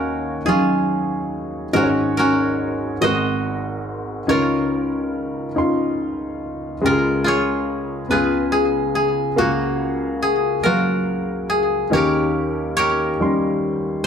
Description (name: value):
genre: gospel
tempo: 47 BPM (dotted quarters)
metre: 6/8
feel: straight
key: Db major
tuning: A4 = 440 Hz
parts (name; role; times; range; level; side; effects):
- koto; melody; 0.0-14.1 s; Bb3 to Eb5; -20 LUFS; left 1 dB; slapback echo
- warm upright piano; accompaniment; 0.0-14.1 s; Ab1 to C6; -20 LUFS; equal; none
room: moderate echo chamber reverb, RT60 1.4 s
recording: dark, warm production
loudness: -18 LUFS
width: side -7 dB against mid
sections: 0.0-6.8 A section; 6.8-14.1 A section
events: none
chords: 0.0 Ebm9; 1.7 Ab7sus4; 3.0 Ab9; 4.3 Db69; 6.8 Db; 8.1 Db7; 9.4 Gbmaj9/Db; 11.9 Eb7